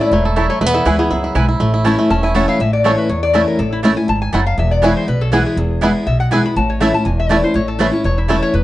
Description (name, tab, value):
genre	bluegrass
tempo	242 BPM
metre	4/4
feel	straight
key	A major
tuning	A4 = 439 Hz
part	lap resonator guitar	second line	0.0-8.6 s	E4 to B5	-20 LUFS	left 3 dB	analog delay
part	picked steel-string acoustic guitar	accompaniment	0.0-8.6 s	E2 to E4	-18 LUFS	left 1 dB	none
part	bluegrass banjo	arpeggios	0.0-8.4 s	A3 to A4	-18 LUFS	right 2 dB	none
part	upright bass	bass	0.1-8.6 s	E1 to E2	-19 LUFS	equal	none
part	mandolin	stabs	0.4-8.4 s	A3 to A5	-21 LUFS	right 4 dB	none
room	moderate studio reverb, RT60 0.5 s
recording	dark, warm production, nothing above 10.5 kHz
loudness	-13 LUFS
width	side -15 dB against mid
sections	0.0-2.6 A section; 2.6-8.6 A section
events	resonator guitar played with a steel bar solo 0.0-8.6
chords	0.0 A; 0.6 E; 1.6 A; 4.6 E; 6.6 A